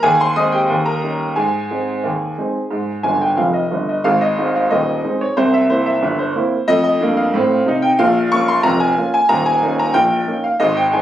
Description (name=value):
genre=ragtime piano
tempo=91 BPM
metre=2/4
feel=straight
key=Ab major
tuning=A4 = 439 Hz
part: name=clear upright piano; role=solo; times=0.0-11.0 s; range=Eb1 to Eb6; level=-14 LUFS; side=equal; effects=none
room=light reverb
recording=recorded on a phone in the room, studio reverb, compression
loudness=-14 LUFS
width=side -12 dB against mid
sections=0.0-4.0 A section; 4.0-11.0 B section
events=upright piano fill 3.0-4.0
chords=0.0 Ab/Eb; 0.7 Eb7; 1.4 Ab; 5.4 C7; 6.7 F7; 8.0 Bbm; 9.3 Eb5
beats=| 0.04 0.70 | 1.36 2.03 | 2.70 3.37 | 4.04 4.70 | 5.36 6.01 | 6.67 7.33 | 7.98 8.64 | 9.29 9.95 | 10.60